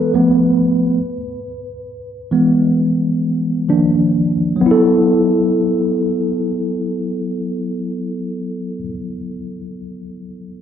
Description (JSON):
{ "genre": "R&B", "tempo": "62-71 BPM", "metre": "4/4", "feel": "swing 58% on 16ths", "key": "unclear", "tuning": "A4 = 440 Hz", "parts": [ { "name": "tine electric piano", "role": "accompaniment", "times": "0.0-10.6 s", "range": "D#3 to B4", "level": "-15 LUFS", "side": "equal", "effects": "overdrive, fast stereo tremolo" } ], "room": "wet lush hall reverb, RT60 1.8 s", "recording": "dreamy mix soaked in reverb", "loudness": "-14 LUFS", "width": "side -9 dB against mid", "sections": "0.0-4.6 A section; 4.6-8.5 B section", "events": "slowing down 0.0-4.6; tine electric piano solo 0.0-4.6", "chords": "0.1 Asus2; 1.0 E; 3.7 A#add11/D#; 4.6 B7sus4" }